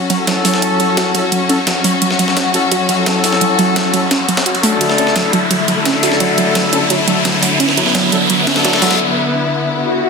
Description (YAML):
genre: dark technical drum and bass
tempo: 172 BPM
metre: 4/4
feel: straight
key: F# minor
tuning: A4 = 438 Hz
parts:
  - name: rich symphonic string section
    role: sustained chords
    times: 0.0-10.1 s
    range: D3 to F#4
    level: -17 LUFS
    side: left 3 dB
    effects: none
  - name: warbly dusty pluck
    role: arpeggios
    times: 0.0-9.0 s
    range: F#3 to F#4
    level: -18 LUFS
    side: right 3 dB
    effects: chorus, cassette tape, ping-pong delay
  - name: riser and swell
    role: sound effects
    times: 1.7-10.1 s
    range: none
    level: -19 LUFS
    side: equal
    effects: none
  - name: breakbeat sampler-style drum kit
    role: drums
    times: 0.1-9.0 s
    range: ride cymbal, snare drum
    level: -20 LUFS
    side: equal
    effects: high-pass filter on cymbals, small room ambience, high-pass filter on snare
  - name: electronic hi-hat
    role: drums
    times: 0.1-8.9 s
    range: none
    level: -19 LUFS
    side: right 3 dB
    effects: overdrive, high-pass filter on hats, small room ambience
  - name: mellow brass ensemble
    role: stabs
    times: 0.2-9.0 s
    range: C#4 to A4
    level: -19 LUFS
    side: left 2 dB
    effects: ping-pong delay
room: moderate digital room reverb, RT60 1.2 s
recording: dense, heavily limited modern master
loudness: -11 LUFS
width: side -4 dB against mid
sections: 0.0-10.1 A section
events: build-up 0.0-10.1; filter sweep on synth arpeggio sound 0.0-10.1; riser 1.7-9.0; break 9.0-10.1; swell 9.8-10.1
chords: 0.0 F#m7; 4.8 D